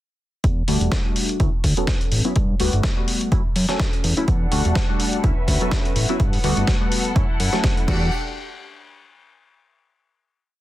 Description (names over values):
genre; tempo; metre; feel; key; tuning
filtered disco house; 125 BPM; 4/4; swing 55% on 16ths; E dorian; A4 = 440 Hz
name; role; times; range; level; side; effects
fat analog bass; bass; 0.4-8.1 s; E1 to G2; -22 LUFS; equal; sidechain pumping, low-pass filter
dusty soul sampler-style drum kit; drums; 0.4-8.0 s; crash cymbal, hi-hat, snare drum; -26 LUFS; equal; sidechain pumping on hats, sidechain pumping on cymbals
electronic kick drum; drums; 0.4-8.0 s; none; -21 LUFS; equal; none
funky polysynth comp; accompaniment; 0.7-8.1 s; F#3 to A4; -25 LUFS; equal; chorus, phaser, sidechain pumping, low-pass filter
rich studio violin section; sustained chords; 4.3-8.1 s; G3 to F#5; -28 LUFS; left 2 dB; sidechain pumping, low-pass filter
tambourine; percussion; 4.3-8.1 s; none; -46 LUFS; right 3 dB; none
room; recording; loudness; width
little or no reverb; dense, heavily limited modern master; -18 LUFS; side -15 dB against mid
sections
0.4-8.1 groove; 8.1-10.0 final hit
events
filter sweep 0.4-8.1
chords
0.4 Em11; 1.4 Dmaj13; 2.4 Gmaj9; 3.3 F#m7; 4.3 Em11; 5.2 Dmaj13; 6.2 Gmaj9; 7.2 F#m7; 7.9 Em11; 8.1 N.C.